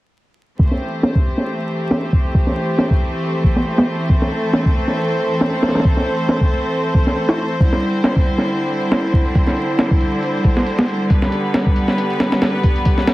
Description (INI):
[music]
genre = breakbeat, breaks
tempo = 137 BPM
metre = 4/4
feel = swing 56% on 16ths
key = A minor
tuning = A4 = 441 Hz
[part]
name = rich chamber string section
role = sustained chords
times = 0.6-13.1 s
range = D3 to C5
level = -19 LUFS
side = equal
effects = sidechain pumping
[part]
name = breakbeat sampler-style drum kit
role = drums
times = 0.6-13.1 s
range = hi-hat, kick drum, snare drum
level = -15 LUFS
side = equal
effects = low-pass filter on kick, low-pass filter on hats, low-pass filter on snare
[sound]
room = moderate studio reverb, RT60 0.6 s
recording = heavily compressed radio sound, vinyl crackle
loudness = -15 LUFS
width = side -17 dB against mid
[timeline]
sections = 0.6-13.1 A section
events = filter sweep on drum 0.6-13.1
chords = 0.6 Am7; 7.6 Cadd9; 11.1 G